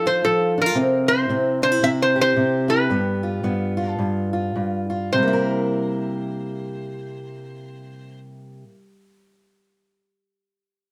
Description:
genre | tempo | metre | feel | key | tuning
acoustic country blues, solo or duo | 103-115 BPM | 4/4 | swing 60% on 8ths | C mixolydian | A4 = 441 Hz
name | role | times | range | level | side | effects
metal-body resonator slide guitar | melody | 0.0-8.2 s | A4 to E5 | -23 LUFS | equal | plate reverb
fingerpicked steel-string acoustic guitar | accompaniment | 0.0-8.8 s | G2 to Bb4 | -25 LUFS | equal | none
room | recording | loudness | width
moderate studio reverb, RT60 0.6 s | none | -21 LUFS | mono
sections
0.0-5.1 A section; 5.1-9.8 B section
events
slowing down 0.8-5.1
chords
0.0 F7; 0.8 C; 2.9 G7; 5.1 C7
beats
0.25 | 0.77 1.29 1.82 2.35 | 2.89 3.43 3.99 4.55 | 5.13 5.72 6.30 6.89 | 7.47 8.05 8.64

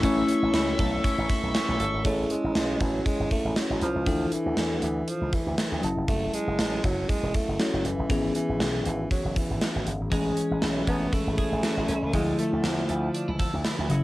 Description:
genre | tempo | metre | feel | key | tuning
1980s-style pop | 119 BPM | 4/4 | swing 55% on 16ths | A major | A4 = 441 Hz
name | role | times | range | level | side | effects
bell-like tine electric piano | accompaniment | 0.0-14.0 s | C#3 to A5 | -28 LUFS | left 2 dB | phaser, cassette tape
pipe organ, clarinet reed | sustained chords | 0.0-2.0 s | A4 to E6 | -30 LUFS | equal | cassette tape
twelve-string electric guitar | riff | 0.0-2.6, 10.1-14.0 s | E3 to A4 | -35 LUFS | right 2 dB | wide subtle chorus, cassette tape, tape echo
slap bass with an envelope filter | bass | 0.0-14.0 s | E1 to E2 | -30 LUFS | equal | none
gated 80s drum kit | drums | 0.0-14.0 s | hi-hat, kick drum, snare drum | -28 LUFS | equal | cassette tape
breathy alto saxophone | melody | 2.1-13.6 s | E3 to B3 | -31 LUFS | right 2 dB | cassette tape
room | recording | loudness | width
wet booth ambience, RT60 0.2 s | home recording on cassette | -24 LUFS | side -17 dB against mid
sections
0.0-2.0 A section; 2.0-14.0 B section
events
none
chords
0.0 A; 2.0 Amaj7; 4.1 Dsus2; 5.8 F#m7; 8.1 C#m7/G#; 10.1 Amaj7; 12.1 Dmadd9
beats
| 0.03 0.54 1.04 1.55 | 2.05 2.55 3.06 3.56 | 4.07 4.57 5.08 5.58 | 6.08 6.59 7.09 7.60 | 8.10 8.60 9.11 9.61 | 10.12 10.62 11.12 11.63 | 12.13 12.64 13.14 13.65

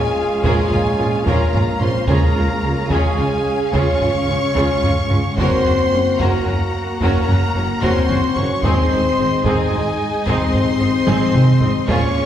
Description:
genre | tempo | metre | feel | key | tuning
cinematic, epic orchestral film score | 74 BPM (dotted quarters) | 12/8 | straight | unclear | A4 = 440 Hz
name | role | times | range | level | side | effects
clear symphonic violin section | melody | 0.0-12.3 s | Ab5 to Db6 | -26 LUFS | left 2 dB | none
dark French horn section | sustained chords | 0.0-12.3 s | Ab3 to Db4 | -24 LUFS | left 6 dB | none
rich symphonic string section | sustained chords | 0.0-12.3 s | Ab3 to Gb5 | -26 LUFS | equal | none
mellow trumpet section | stabs | 0.0-12.3 s | Ab4 to Db5 | -23 LUFS | equal | none
impact | sound effects | 0.0-2.1 s | none | barely audible | none | none
rich chamber violin section | second line | 0.4-12.2 s | Bb3 to Bb4 | -29 LUFS | left 1 dB | none
rich symphonic viola section | accompaniment | 0.4-12.2 s | Bb3 to Gb4 | -26 LUFS | right 1 dB | none
mellow tuba | bass | 0.4-12.3 s | Gb1 to Db2 | -26 LUFS | right 2 dB | none
rich symphonic cello section | bass | 0.4-12.2 s | Gb2 to Db3 | -25 LUFS | right 1 dB | none
warm symphonic double bass section | bass | 0.4-12.2 s | Gb1 to Db2 | -26 LUFS | right 2 dB | none
taiko ensemble | drums | 0.4-12.3 s | none | -20 LUFS | equal | none
room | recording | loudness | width
wet scoring stage reverb, RT60 1.6 s | heard from further back in the room | -15 LUFS | side -10 dB against mid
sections
0.0-12.3 A section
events
impact 0.0-2.1; drum fill 11.1-11.9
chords
0.0 Bbm7; 2.1 Db; 5.4 Gb; 8.6 Ab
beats
0.43 1.26 | 2.08 2.89 3.73 4.55 | 5.38 6.19 7.01 7.83 | 8.64 9.45 10.26 11.07 | 11.88

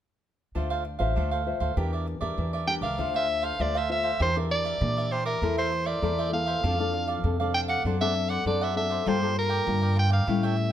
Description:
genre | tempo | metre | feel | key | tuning
samba | 99 BPM | 4/4 | straight | D minor | A4 = 440 Hz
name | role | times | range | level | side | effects
cavaquinho | accompaniment | 0.5-10.6 s | D4 to G5 | -33 LUFS | right 5 dB | none
nylon-string guitar | accompaniment | 0.6-10.7 s | A2 to E5 | -30 LUFS | left 5 dB | none
upright bass | bass | 0.6-10.7 s | A1 to Bb2 | -29 LUFS | equal | none
edgy soprano saxophone | melody | 2.7-10.7 s | Bb4 to G5 | -28 LUFS | right 1 dB | none
room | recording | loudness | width
light reverb | none | -24 LUFS | side -10 dB against mid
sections
0.6-3.0 A section; 3.0-10.7 B section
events
none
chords
0.6 Dm9; 1.8 Em7b5; 3.0 Dm9; 4.2 Em7b5; 5.4 C6/E; 6.6 F6; 7.8 D7/F#; 9.1 Gm9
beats
| 0.56 1.16 1.77 2.38 | 2.99 3.60 4.20 4.81 | 5.42 6.03 6.63 7.24 | 7.85 8.45 9.06 9.67 | 10.28

